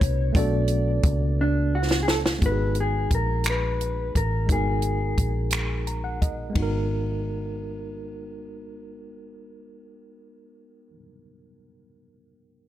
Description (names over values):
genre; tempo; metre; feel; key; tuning
slow six-eight R&B; 58 BPM (dotted quarters); 6/8; straight; G# minor; A4 = 435 Hz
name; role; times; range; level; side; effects
mellow electric guitar; melody; 0.0-5.8 s; D4 to D5; -28 LUFS; left 1 dB; low-pass filter
tine electric piano; accompaniment; 0.0-12.7 s; G#3 to A#5; -32 LUFS; equal; overdrive, fast stereo tremolo, low-pass filter
vintage muted fingered electric bass; bass; 0.0-10.9 s; G#1 to C#2; -26 LUFS; equal; none
compact cocktail drum kit; drums; 0.0-6.7 s; finger snaps, hi-hat, kick drum, ride cymbal, snare drum; -24 LUFS; equal; none
room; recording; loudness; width
small room reverb; none; -22 LUFS; side -12 dB against mid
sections
0.0-2.4 A section; 2.4-6.5 B section; 6.5-10.7 C section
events
drum fill 1.4-2.4; filter sweep 2.4-6.5; tine electric piano fill 5.5-6.5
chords
0.0 Bm9; 2.4 G#m9